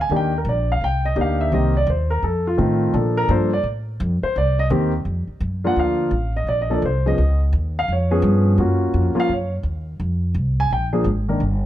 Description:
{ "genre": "jazz piano trio", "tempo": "170 BPM", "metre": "4/4", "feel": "swing 64% on 8ths", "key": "Bb major", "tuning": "A4 = 440 Hz", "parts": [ { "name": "warm concert grand piano", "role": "melody", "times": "0.0-11.4 s", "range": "Eb3 to Ab5", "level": "-20 LUFS", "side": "equal", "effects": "plate reverb" }, { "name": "upright bass", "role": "bass", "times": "0.0-11.7 s", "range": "G1 to Bb2", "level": "-20 LUFS", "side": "equal", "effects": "none" } ], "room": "light reverb", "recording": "dark, warm production, faint mains hum", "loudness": "-18 LUFS", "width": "side -13 dB against mid", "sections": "0.0-5.8 A section; 5.8-11.7 A section", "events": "grand piano solo 0.0-11.7", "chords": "0.1 Ebmaj7; 1.5 Cm7; 2.2 F7; 2.9 Bbmaj7; 4.3 Cm7; 5.1 Gbmaj7(no3)/F; 5.8 Bbmaj7; 7.2 Db7; 8.6 Gbmaj7; 10.0 F5; 10.7 Bb7", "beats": "| 0.11 0.46 0.81 1.17 | 1.52 1.87 2.23 2.58 | 2.93 3.29 3.64 4.00 | 4.35 4.70 5.05 5.41 | 5.76 6.11 6.47 6.82 | 7.17 7.53 7.88 8.23 | 8.59 8.94 9.29 9.65 | 10.00 10.35 10.71 11.06 | 11.41" }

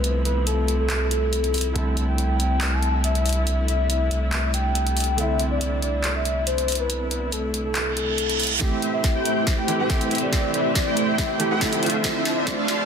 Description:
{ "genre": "future bass", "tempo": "140 BPM", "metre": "4/4", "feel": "half-time", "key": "C major", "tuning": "A4 = 435 Hz", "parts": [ { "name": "soft octave-layered synth lead", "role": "melody", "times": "0.0-12.9 s", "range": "A4 to A5", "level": "-27 LUFS", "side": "left 2 dB", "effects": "chorus, phaser, sidechain pumping, digital delay" }, { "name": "clear concert grand piano", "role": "accompaniment", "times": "0.0-12.9 s", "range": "D3 to G4", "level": "-30 LUFS", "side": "right 3 dB", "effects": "sidechain pumping, digital delay" }, { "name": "rich studio string section", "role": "sustained chords", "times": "0.0-12.9 s", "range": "C3 to B4", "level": "-32 LUFS", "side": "equal", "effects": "sidechain pumping" }, { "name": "long sustained 808-style bass", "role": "bass", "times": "0.0-8.6 s", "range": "C2", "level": "-24 LUFS", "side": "equal", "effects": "sidechain pumping" }, { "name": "trap drum kit", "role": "drums", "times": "0.0-12.8 s", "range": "handclaps, hi-hat, snare drum", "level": "-27 LUFS", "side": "equal", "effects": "high-pass filter on hats, high-pass filter on snare, high-pass filter on room" }, { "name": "reverse cymbal and riser", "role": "sound effects", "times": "7.9-12.9 s", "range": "none", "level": "-30 LUFS", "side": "right 5 dB", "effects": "none" }, { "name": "big bright polysynth", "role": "riff", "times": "8.6-12.9 s", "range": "A3 to G5", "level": "-24 LUFS", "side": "right 1 dB", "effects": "ensemble chorus, sidechain pumping" }, { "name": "electronic kick drum", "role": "drums", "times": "8.6-12.6 s", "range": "none", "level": "-25 LUFS", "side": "equal", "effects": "none" } ], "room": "moderate lush hall reverb, RT60 1.6 s", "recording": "dense, heavily limited modern master, high-pass filter", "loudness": "-20 LUFS", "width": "side -7 dB against mid", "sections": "0.0-8.6 A section; 8.6-12.9 B section", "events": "reverse cymbal 7.9-8.6; build-up 8.6-12.9; drum fill 8.6-12.9; filter sweep on analog polysynth 8.6-12.9; filter sweep 8.6-12.9", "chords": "0.0 Dm9/C; 1.8 C69; 8.6 Am7; 11.8 Dm9", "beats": "| 0.04 0.47 0.90 1.33 | 1.75 2.18 2.61 3.04 | 3.47 3.90 4.33 4.75 | 5.18 5.61 6.04 6.47 | 6.90 7.33 7.75 8.18 | 8.61 9.04 9.47 9.90 | 10.33 10.76 11.18 11.61 | 12.04 12.47" }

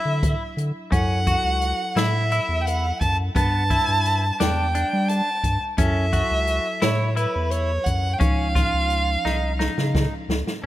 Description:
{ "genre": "progressive instrumental, band music in an uneven meter", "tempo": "173 BPM (eighths)", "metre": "7/8", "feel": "straight", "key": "F# phrygian", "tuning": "A4 = 440 Hz", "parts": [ { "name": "warm violin", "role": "melody", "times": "0.0-10.7 s", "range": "A4 to A5", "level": "-24 LUFS", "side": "right 1 dB", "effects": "ping-pong delay" }, { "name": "mellow tine electric piano", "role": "accompaniment", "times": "0.0-10.6 s", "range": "E#3 to B4", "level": "-33 LUFS", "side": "left 1 dB", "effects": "none" }, { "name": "semi-hollow electric guitar", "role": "arpeggios", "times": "0.0-10.7 s", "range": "B3 to F#4", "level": "-29 LUFS", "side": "left 2 dB", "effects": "analog chorus" }, { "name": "saturated sub bass", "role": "bass", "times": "0.1-10.7 s", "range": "B#1 to G3", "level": "-24 LUFS", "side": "equal", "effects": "none" }, { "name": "open jazz drum kit", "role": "drums", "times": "0.2-10.6 s", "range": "hi-hat, kick drum, snare drum", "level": "-25 LUFS", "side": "equal", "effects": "none" } ], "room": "small room ambience", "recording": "rough home demo mix", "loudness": "-19 LUFS", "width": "side -14 dB against mid", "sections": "0.0-10.6 A section", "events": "drum fill 9.2-10.6", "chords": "0.0 Dadd9; 0.9 F#m7; 3.4 G; 5.8 F#m7; 8.2 C#add9", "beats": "0.23 0.58 | 0.92 1.27 1.62 1.96 2.31 2.66 3.00 | 3.35 3.70 4.04 4.39 4.74 5.08 5.43 | 5.78 6.12 6.47 6.82 7.17 7.51 7.86 | 8.21 8.55 8.90 9.25 9.60 9.94 10.29 | 10.64" }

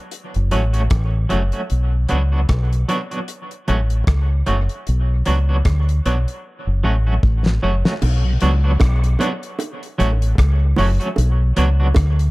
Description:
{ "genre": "dub reggae", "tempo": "76 BPM", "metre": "4/4", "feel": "swing 57% on 16ths", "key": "B minor", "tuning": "A4 = 440 Hz", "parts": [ { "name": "damped 70s drum kit", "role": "drums", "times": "0.1-12.3 s", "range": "crash cymbal, hi-hat, kick drum, rim click, snare drum", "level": "-20 LUFS", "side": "equal", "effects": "none" }, { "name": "deep dub fingered electric bass", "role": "bass", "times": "0.4-12.3 s", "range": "F#1 to D2", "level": "-16 LUFS", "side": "equal", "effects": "none" }, { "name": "electric guitar at the edge of break-up", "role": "accompaniment", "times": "0.5-11.9 s", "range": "F#3 to F#4", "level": "-23 LUFS", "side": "right 2 dB", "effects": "tremolo, dub echo" }, { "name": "bongos", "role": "percussion", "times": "8.0-12.2 s", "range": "none", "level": "-28 LUFS", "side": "right 4 dB", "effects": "dub echo" }, { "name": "tonewheel organ", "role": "accompaniment", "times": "8.2-8.3 s", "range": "B2 to F#3", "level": "-34 LUFS", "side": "left 3 dB", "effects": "none" } ], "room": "studio reverb", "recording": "dark, warm production", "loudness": "-16 LUFS", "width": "side -21 dB against mid", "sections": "0.0-8.0 A section; 8.0-12.3 B section", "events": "drum fill 6.4-8.0", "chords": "0.1 F#m; 1.7 Bm; 3.3 F#m; 4.9 Bm; 6.4 F#m; 8.0 Bm; 9.6 F#m; 11.2 Bm", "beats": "0.12 0.91 | 1.70 2.49 3.28 4.07 | 4.86 5.65 6.44 7.23 | 8.02 8.80 9.59 10.38 | 11.17 11.96" }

